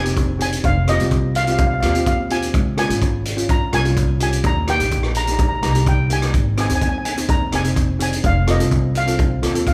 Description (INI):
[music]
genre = calypso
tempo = 126 BPM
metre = 4/4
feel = straight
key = Ab major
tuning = A4 = 440 Hz
[part]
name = steel pan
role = melody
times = 0.0-9.7 s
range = Eb5 to Bb5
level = -26 LUFS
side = equal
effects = none
[part]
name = steel pan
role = accompaniment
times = 0.0-9.7 s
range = Bb3 to Bb4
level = -26 LUFS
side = equal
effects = none
[part]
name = upright bass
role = bass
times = 0.0-9.7 s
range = F1 to Eb2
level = -23 LUFS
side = equal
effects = none
[part]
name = crunchy breakbeat drum kit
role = drums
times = 0.1-9.7 s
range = hi-hat, kick drum, rim click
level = -23 LUFS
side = equal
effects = none
[sound]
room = moderate large studio reverb, RT60 1.2 s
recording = band playing live in one room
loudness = -18 LUFS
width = mono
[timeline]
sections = 0.0-9.7 A section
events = none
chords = 0.0 Ab; 0.6 Fsus2; 2.5 Db; 4.4 Eb; 6.3 Ab; 8.2 F7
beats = 0.17 | 0.65 1.12 1.59 2.07 | 2.54 3.02 3.49 3.96 | 4.44 4.91 5.39 5.86 | 6.34 6.81 7.29 7.76 | 8.24 8.72 9.19 9.67